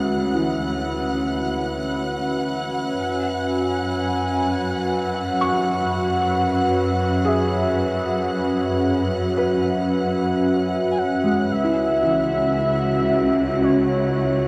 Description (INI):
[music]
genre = ambient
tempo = 56 BPM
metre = 4/4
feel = straight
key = unclear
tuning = A4 = 436 Hz
[part]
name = evolving wavetable pad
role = sustained chords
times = 0.0-14.5 s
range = C#4 to E5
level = -24 LUFS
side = equal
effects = chorus, built-in reverb
[part]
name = felt-muted upright piano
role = arpeggios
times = 0.0-14.5 s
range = E3 to C#6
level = -31 LUFS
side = equal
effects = diffuse ambient delay
[part]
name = rich studio cello section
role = bass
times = 0.0-14.5 s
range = C#2 to F#2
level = -29 LUFS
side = equal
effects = none
[part]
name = warm symphonic violin section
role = texture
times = 0.0-14.5 s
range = F#5 to F#6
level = -33 LUFS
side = equal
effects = none
[part]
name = warm velvety synth lead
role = melody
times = 3.0-14.5 s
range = C#5 to G#5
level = -28 LUFS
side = equal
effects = chorus, diffuse ambient delay
[sound]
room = wet huge ambient reverb, RT60 8.3 s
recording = dark, warm production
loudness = -21 LUFS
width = mono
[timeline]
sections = 0.0-14.5 A section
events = fade-in on cello section 0.0-14.5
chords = 0.0 Dmaj7; 3.0 F#5; 11.5 C#m7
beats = 0.82 1.89 | 2.97 4.05 5.12 6.19 | 7.26 8.32 9.39 10.45 | 11.50 12.55 13.60